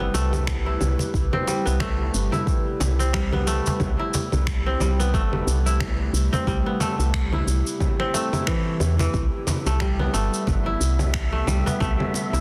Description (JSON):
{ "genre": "organic downtempo", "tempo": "90 BPM", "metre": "4/4", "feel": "swing 57% on 16ths", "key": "A minor", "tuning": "A4 = 440 Hz", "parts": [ { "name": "warbly tape-like pad", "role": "sustained chords", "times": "0.0-12.4 s", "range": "C3 to B4", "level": "-34 LUFS", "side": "equal", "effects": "chorus, built-in reverb, phaser, sidechain pumping" }, { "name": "kora", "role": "arpeggios", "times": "0.0-12.4 s", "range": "E3 to E4", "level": "-29 LUFS", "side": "equal", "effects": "tape echo" }, { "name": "woody FM bass", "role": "bass", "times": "0.0-12.4 s", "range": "G1 to E2", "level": "-25 LUFS", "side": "equal", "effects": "tube saturation, sidechain pumping" }, { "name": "electronic shaker, congas and finger snaps", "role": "drums", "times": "0.1-12.4 s", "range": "none", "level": "-31 LUFS", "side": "equal", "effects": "soft clipping on snare" }, { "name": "electronic kick drum", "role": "drums", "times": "0.5-12.0 s", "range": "none", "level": "-29 LUFS", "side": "equal", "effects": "none" }, { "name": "cajon", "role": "percussion", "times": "1.0-12.3 s", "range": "none", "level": "-31 LUFS", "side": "equal", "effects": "none" }, { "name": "wind-like tuned noise texture", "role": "texture", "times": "9.9-12.4 s", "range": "E5", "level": "-38 LUFS", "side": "equal", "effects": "built-in reverb" } ], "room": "light reverb", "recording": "dense, heavily limited modern master", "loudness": "-23 LUFS", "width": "mono", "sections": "0.0-12.4 A section", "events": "none", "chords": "0.0 Am7", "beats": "0.47 | 1.14 1.81 2.47 3.14 | 3.81 4.47 5.14 5.81 | 6.47 7.14 7.81 8.47 | 9.14 9.81 10.47 11.14 | 11.81" }